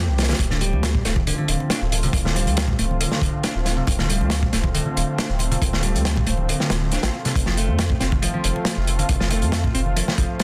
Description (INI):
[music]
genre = breakbeat, breaks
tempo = 138 BPM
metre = 4/4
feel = straight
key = D minor pentatonic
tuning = A4 = 440 Hz
[part]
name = lush unison pad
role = sustained chords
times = 0.0-10.4 s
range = D3 to G4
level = -32 LUFS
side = equal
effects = chorus, vintage 12-bit sampler grit, sidechain pumping
[part]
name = modern bright picked electric bass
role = riff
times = 0.0-10.4 s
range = C3 to D4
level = -30 LUFS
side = equal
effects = tube saturation, tape echo
[part]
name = saturated sub bass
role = bass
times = 0.0-10.3 s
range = D1 to F2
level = -25 LUFS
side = equal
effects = none
[part]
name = crunchy breakbeat drum kit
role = drums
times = 0.2-10.4 s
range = hi-hat, kick drum, snare drum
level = -25 LUFS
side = equal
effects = none
[part]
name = congas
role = percussion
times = 0.4-10.4 s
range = none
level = -34 LUFS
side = equal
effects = none
[sound]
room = light reverb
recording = dense, heavily limited modern master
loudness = -21 LUFS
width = mono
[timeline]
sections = 0.0-10.4 A section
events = none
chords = 0.4 Dm7; 7.4 F